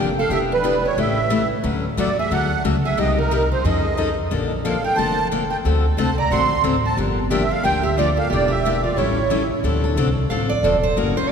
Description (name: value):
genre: acoustic string swing (jazz manouche)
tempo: 180 BPM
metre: 4/4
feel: swing 60% on 8ths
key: D minor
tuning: A4 = 440 Hz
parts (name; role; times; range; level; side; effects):
- picked steel-string acoustic guitar; accompaniment; 0.0-11.3 s; C3 to A4; -23 LUFS; left 5 dB; none
- upright bass; bass; 0.0-11.2 s; E1 to F2; -23 LUFS; equal; none
- musette accordion; melody; 0.2-9.5 s; Bb4 to C6; -22 LUFS; right 4 dB; none
- picked steel-string acoustic guitar; second line; 0.2-11.3 s; D4 to F#5; -26 LUFS; right 3 dB; none
room: wet cathedral reverb, RT60 4.5 s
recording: recorded in a church or concert hall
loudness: -17 LUFS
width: side -6 dB against mid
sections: 0.0-9.6 A section; 9.6-11.3 B section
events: steel-string acoustic guitar solo 9.6-11.3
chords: 0.3 Em7; 1.0 A7; 1.6 Dmaj7; 3.0 Cm7; 3.6 F7alt; 4.3 Bbmaj9; 5.6 D7; 7.0 Gm7; 8.3 Em7b5; 9.0 A7; 9.6 Dm7